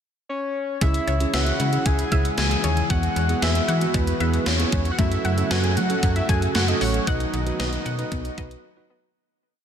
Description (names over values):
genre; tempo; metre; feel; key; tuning
synth-pop; 115 BPM; 4/4; straight; unclear; A4 = 440 Hz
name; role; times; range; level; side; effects
fat analog lead; melody; 0.3-8.9 s; B4 to G#5; -27 LUFS; left 1 dB; chorus, ping-pong delay
tine electric piano; accompaniment; 0.8-9.1 s; B3 to B4; -29 LUFS; right 4 dB; lush chorus
chorused pulse-width pad; sustained chords; 1.2-9.1 s; C#3 to F#4; -30 LUFS; left 1 dB; none
warbly dusty pluck; arpeggios; 0.8-9.1 s; G#3 to G#5; -31 LUFS; left 2 dB; chorus, ping-pong delay
slap-like FM bass; bass; 0.8-8.6 s; A1 to F#3; -24 LUFS; equal; none
gated 80s digital drum machine; drums; 0.8-8.6 s; hi-hat, kick drum, snare drum; -25 LUFS; equal; gated reverb, gated reverb snare, overdrive
room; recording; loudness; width
moderate huge ambient reverb, RT60 7.9 s; dreamy mix soaked in reverb; -20 LUFS; side -8 dB against mid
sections
0.0-0.8 pickup bar; 0.8-9.2 pre-chorus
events
fade-out 7.1-9.2; break 8.6-9.2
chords
0.0 N.C.; 0.8 C#m; 2.9 Eadd9; 5.0 F#madd9; 7.1 B